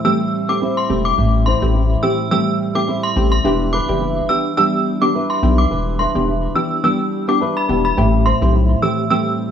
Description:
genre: dancehall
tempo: 106 BPM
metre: 4/4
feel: swing 56% on 16ths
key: A minor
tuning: A4 = 440 Hz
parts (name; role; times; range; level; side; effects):
- synth chime; melody; 0.0-9.2 s; B5 to E6; -20 LUFS; equal; ensemble chorus, phaser, tape echo
- punchy chord stab; accompaniment; 0.0-9.5 s; E3 to G4; -20 LUFS; left 1 dB; chorus
- flamenco guitar; arpeggios; 0.0-9.5 s; A2 to C5; -21 LUFS; right 3 dB; none
- saturated sub bass; bass; 0.9-8.7 s; E1 to B1; -17 LUFS; left 1 dB; none
room: light reverb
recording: worn, warbling old tape, cassette tape, warbly pitch drift, small room ambience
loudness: -14 LUFS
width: side -8 dB against mid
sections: 0.0-9.5 A section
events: none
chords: 0.0 Am7; 3.4 Em7; 8.0 Am7

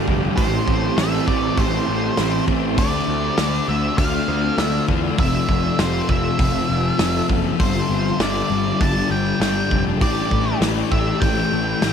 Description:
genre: rock, shoegaze and dream pop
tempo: 100 BPM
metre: 4/4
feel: straight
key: A minor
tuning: A4 = 439 Hz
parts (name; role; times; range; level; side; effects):
- shimmering ambient pad; sustained chords; 0.0-11.9 s; A3 to A5; -29 LUFS; right 2 dB; chorus, built-in reverb
- electric guitar through a small old amp; riff; 0.0-2.8 s; A2 to G4; -26 LUFS; right 10 dB; reverse reverb
- thick fuzz guitar; riff; 0.0-11.9 s; F2 to D4; -22 LUFS; left 8 dB; distortion, analog chorus
- fuzz picked electric bass; bass; 0.1-11.9 s; F1 to E2; -24 LUFS; right 1 dB; overdrive
- loose indie drum kit; drums; 0.1-11.9 s; hi-hat, kick drum, snare drum; -23 LUFS; right 1 dB; none
- octave-fuzz lead guitar; melody; 0.4-11.9 s; C5 to A5; -25 LUFS; right 2 dB; distortion, ping-pong delay
room: moderate cathedral reverb, RT60 5.4 s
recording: dreamy mix soaked in reverb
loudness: -17 LUFS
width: side -7 dB against mid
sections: 0.0-2.8 A section; 2.8-11.9 B section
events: none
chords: 0.4 Am7; 2.8 Dm7; 5.2 Fmaj7; 7.6 Gsus2; 10.0 Am7

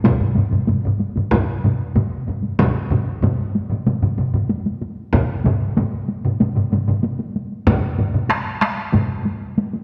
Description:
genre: japanese traditional, taiko drum ensemble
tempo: 95 BPM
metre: 4/4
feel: straight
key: none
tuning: none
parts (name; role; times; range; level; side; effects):
- taiko ensemble; percussion; 0.0-9.8 s; none; -26 LUFS; equal; none
- taiko ensemble; percussion; 0.0-7.8 s; none; -24 LUFS; equal; none
- taiko ensemble; percussion; 0.1-9.1 s; none; -24 LUFS; equal; none
- taiko ensemble; percussion; 0.1-9.1 s; none; -26 LUFS; equal; none
room: wet scoring stage reverb, RT60 1.9 s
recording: dark, warm production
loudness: -20 LUFS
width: mono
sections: 0.0-2.6 A section; 2.6-9.8 B section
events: none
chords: none

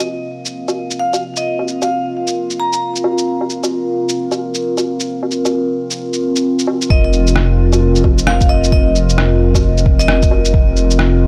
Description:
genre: future garage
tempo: 132 BPM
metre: 4/4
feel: swing 62% on 16ths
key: unclear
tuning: A4 = 444 Hz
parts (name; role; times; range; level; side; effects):
- dark analog pad; sustained chords; 0.0-11.3 s; C4 to F5; -20 LUFS; equal; chorus, phaser, sidechain pumping
- electronic shaker, woodblock and rim click; drums; 0.0-11.1 s; none; -22 LUFS; equal; none
- vibraphone with hard mallets; melody; 1.0-2.8, 6.9-10.3 s; Eb5 to Bb5; -24 LUFS; equal; tape echo
- dark detuned saw bass; bass; 6.9-11.3 s; F1; -16 LUFS; equal; tube saturation, sidechain pumping
- electronic kick drum; drums; 6.9-10.7 s; none; -16 LUFS; equal; none
room: little or no reverb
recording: dry, gritty hardware recording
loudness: -15 LUFS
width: mono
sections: 0.0-6.9 A section; 6.9-11.3 B section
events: filter sweep on analog synth pad 0.0-6.9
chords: 0.0 F5

